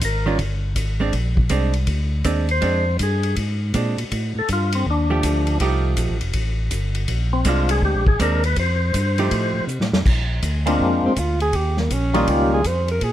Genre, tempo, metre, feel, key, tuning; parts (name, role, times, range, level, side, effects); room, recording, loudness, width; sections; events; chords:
soul jazz organ trio; 162 BPM; 4/4; swing 65% on 8ths; Bb mixolydian; A4 = 440 Hz
percussive tonewheel organ; melody; 0.0-12.6 s; G3 to C5; -22 LUFS; left 2 dB; slow rotary speaker
tonewheel organ; bass; 0.0-13.1 s; F1 to C3; -21 LUFS; equal; overdrive, chorus vibrato, slow rotary speaker
warm soul drum kit; drums; 0.0-13.1 s; crash cymbal, hi-hat, kick drum, ride cymbal, snare drum; -25 LUFS; equal
archtop guitar, miked and amplified; accompaniment; 0.3-12.6 s; Eb3 to G4; -24 LUFS; right 5 dB
breathy alto saxophone; melody; 11.1-13.1 s; Bb3 to C5; -23 LUFS; right 2 dB
light reverb; -18 LUFS; side -12 dB against mid
0.0-10.0 A section; 10.0-13.1 A section
tonewheel organ solo 0.0-10.0; drum fill 9.7-10.0; alto saxophone solo 10.0-13.1
0.0 Eb (rootless); 1.1 Bb9; 4.1 F9; 7.1 Bb9; 8.6 F9; 10.0 Bb9; 11.5 Eb9